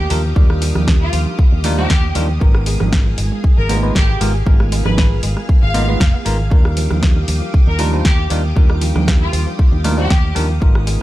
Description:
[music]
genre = nu-disco, nu disco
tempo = 117 BPM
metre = 4/4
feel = swing 53% on 16ths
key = Eb major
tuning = A4 = 438 Hz
[part]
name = string machine, full ensemble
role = sustained chords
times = 0.0-11.0 s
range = G4 to F6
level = -29 LUFS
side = equal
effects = ensemble chorus, sidechain pumping
[part]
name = wide unison pluck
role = arpeggios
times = 0.0-10.9 s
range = D3 to Ab4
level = -30 LUFS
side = right 2 dB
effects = none
[part]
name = fingered electric bass with an envelope filter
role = bass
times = 0.0-11.0 s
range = F1 to Eb2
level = -17 LUFS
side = equal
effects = tube saturation
[part]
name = bell-like tine electric piano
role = accompaniment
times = 0.1-11.0 s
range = G3 to C5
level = -24 LUFS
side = equal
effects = phaser, sidechain pumping
[part]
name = house drum kit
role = drums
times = 0.1-11.0 s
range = hi-hat, rim click, snare drum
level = -23 LUFS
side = equal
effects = studio reverb
[part]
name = electronic kick drum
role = drums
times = 0.4-10.7 s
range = none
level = -12 LUFS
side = equal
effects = studio reverb
[part]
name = congas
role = percussion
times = 0.8-10.0 s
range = none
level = -25 LUFS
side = right 5 dB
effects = none
[part]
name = clear studio violin section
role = melody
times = 1.0-10.4 s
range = F4 to F5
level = -26 LUFS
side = left 1 dB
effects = tape echo
[sound]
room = digital ambience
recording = none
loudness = -12 LUFS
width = side -16 dB against mid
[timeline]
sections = 0.0-11.0 A section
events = none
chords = 0.0 Ebmaj9; 2.4 Abm6; 6.5 Ebmaj9

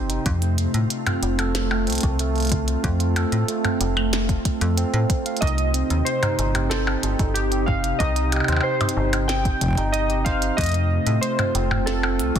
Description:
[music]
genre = IDM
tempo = 93 BPM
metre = 4/4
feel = straight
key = unclear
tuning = A4 = 440 Hz
[part]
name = glassy FM pad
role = sustained chords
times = 0.0-12.4 s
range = C3 to G4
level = -27 LUFS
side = right 1 dB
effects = ensemble chorus, built-in reverb, sidechain pumping
[part]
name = bright tine electric piano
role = arpeggios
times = 0.0-12.4 s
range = A3 to F5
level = -28 LUFS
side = right 4 dB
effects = vintage 12-bit sampler grit, tape echo
[part]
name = metallic FM bass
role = bass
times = 0.0-12.4 s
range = F1 to A2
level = -23 LUFS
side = equal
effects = tube saturation
[part]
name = glitchy drum kit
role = drums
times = 0.1-12.4 s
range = hi-hat, percussion blips, snare drum, toms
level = -26 LUFS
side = equal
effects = soft clipping on snare
[part]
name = electronic kick drum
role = drums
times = 0.3-12.4 s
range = none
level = -23 LUFS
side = equal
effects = none
[part]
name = warbly lo-fi synth keys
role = melody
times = 5.4-12.4 s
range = G4 to G5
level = -26 LUFS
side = equal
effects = chorus, tape echo
[sound]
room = light reverb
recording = dense, heavily limited modern master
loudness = -19 LUFS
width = side -9 dB against mid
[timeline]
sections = 0.0-12.4 A section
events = none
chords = 0.3 F; 5.4 Cm; 10.6 F

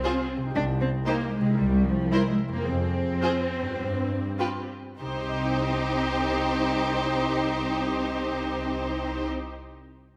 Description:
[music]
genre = cinematic, playful, whimsical film cue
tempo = 95-118 BPM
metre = 4/4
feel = straight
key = C minor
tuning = A4 = 443 Hz
[part]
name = bright studio violin section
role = melody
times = 0.0-9.3 s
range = B4 to C5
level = -37 LUFS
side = equal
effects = none
[part]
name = clear studio violin section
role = second line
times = 0.0-9.3 s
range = G4 to Bb4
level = -35 LUFS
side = equal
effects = none
[part]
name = clear studio viola section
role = accompaniment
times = 0.0-9.3 s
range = Eb4 to F4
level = -33 LUFS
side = equal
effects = none
[part]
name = concert harp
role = arpeggios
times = 0.0-9.6 s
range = F2 to Eb5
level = -36 LUFS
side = equal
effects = none
[part]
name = warm studio cello section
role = bass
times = 0.0-9.3 s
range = F3 to D4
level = -31 LUFS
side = equal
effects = none
[part]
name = clear studio double bass section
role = bass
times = 0.5-9.3 s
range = C2 to G2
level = -34 LUFS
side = equal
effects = none
[sound]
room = wet scoring stage reverb, RT60 1.6 s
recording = none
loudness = -27 LUFS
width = mono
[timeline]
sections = 0.0-5.0 A section; 5.0-9.9 B section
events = slowing down 0.0-5.0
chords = 0.0 Fm/C; 0.6 Cm; 1.6 C7; 2.7 Fm; 3.8 G7; 5.0 Cm

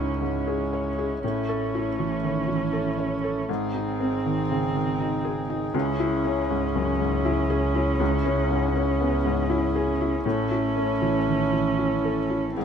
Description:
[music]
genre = neoclassical piano and strings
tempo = 80 BPM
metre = 3/4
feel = rubato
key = unclear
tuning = A4 = 441 Hz
[part]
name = muted cello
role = second line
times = 0.0-12.6 s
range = B#3 to C#4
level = -28 LUFS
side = right 4 dB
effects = none
[part]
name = felt-muted upright piano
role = accompaniment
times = 0.0-12.6 s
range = C#2 to C#5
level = -26 LUFS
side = left 2 dB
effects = none
[part]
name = pedal harmonium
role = sustained chords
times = 0.0-12.6 s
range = G#3 to C#5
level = -31 LUFS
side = equal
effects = none
[part]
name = muted double bass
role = bass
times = 0.0-12.6 s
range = G#1 to C#2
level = -30 LUFS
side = equal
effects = none
[sound]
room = light reverb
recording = minimal, uncompressed stereo recording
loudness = -22 LUFS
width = side -7 dB against mid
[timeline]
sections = 0.0-12.6 A section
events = none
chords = 0.0 C#m; 1.2 A; 3.5 G#; 5.7 C#m; 10.2 A

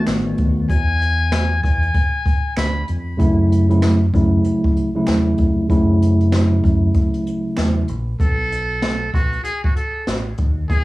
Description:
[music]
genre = hip hop, boom-bap hip-hop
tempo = 96 BPM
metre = 4/4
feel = swing 63% on 16ths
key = unclear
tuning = A4 = 436 Hz
[part]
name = trumpet with metal mute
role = melody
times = 0.0-2.9, 8.2-10.8 s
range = F#4 to B5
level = -23 LUFS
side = left 2 dB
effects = high-pass filter, low-pass filter, cassette tape, analog delay
[part]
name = mellow tine electric piano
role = accompaniment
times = 0.0-7.9 s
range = C#3 to F#4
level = -18 LUFS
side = equal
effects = fast stereo tremolo, high-pass filter, low-pass filter, cassette tape
[part]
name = deep dub fingered electric bass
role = bass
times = 0.1-10.8 s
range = A1 to F#2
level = -19 LUFS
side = equal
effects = tube saturation
[part]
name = jazz brush drum kit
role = drums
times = 0.1-10.8 s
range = hi-hat, kick drum, snare drum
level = -20 LUFS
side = equal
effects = none
[part]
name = finger snaps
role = percussion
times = 0.1-7.8 s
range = none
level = -35 LUFS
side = right 4 dB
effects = none
[sound]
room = light reverb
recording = home recording on cassette, small room ambience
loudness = -15 LUFS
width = side -18 dB against mid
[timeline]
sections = 0.0-8.2 A section; 8.2-10.8 B section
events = none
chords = 0.0 B7; 0.7 E; 3.2 F#m7; 8.2 B7(no3)

